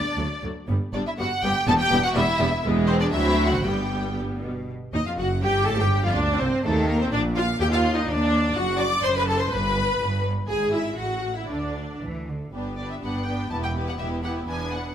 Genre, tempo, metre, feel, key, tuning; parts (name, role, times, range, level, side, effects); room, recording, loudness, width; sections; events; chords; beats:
quick classical-period movement for string orchestra; 114-126 BPM; 2/4; rubato; G major; A4 = 440 Hz
clear symphonic violin section; melody; 0.0-14.9 s; A4 to D6; -29 LUFS; left 1 dB
warm symphonic violin section; second line; 0.0-14.9 s; C4 to D6; -30 LUFS; left 1 dB
rich symphonic viola section; accompaniment; 0.2-14.9 s; F#3 to D5; -26 LUFS; equal
rich symphonic cello section; bass; 0.2-14.9 s; C2 to E3; -29 LUFS; right 1 dB
rich symphonic double bass section; bass; 0.2-14.9 s; E1 to Eb2; -28 LUFS; right 1 dB
moderate recital hall reverb, RT60 1.7 s; -21 LUFS; side -9 dB against mid
0.0-4.7 A section; 4.7-12.5 B section; 12.5-14.9 A section
0.2 D; 0.7 G; 1.7 Em; 2.6 E; 3.1 D7; 3.7 G; 4.7 Ebsus2; 5.2 N.C.; 5.7 G5; 6.6 Adim/Eb; 7.1 Bb; 7.6 Ebmaj7sus2; 8.6 D7/F#; 9.5 G; 10.5 E/G#; 11.0 F#m7/A; 11.5 N.C.; 12.0 Dsus2; 12.5 G; 13.5 Em; 14.5 E7
0.17 | 0.68 1.19 | 1.68 2.15 | 2.64 3.14 | 3.65 4.18 | 4.70 5.19 | 5.67 6.16 | 6.64 7.12 | 7.60 8.07 | 8.55 9.03 | 9.51 9.99 | 10.48 10.98 | 11.48 12.01 | 12.53 13.02 | 13.51 13.99 | 14.47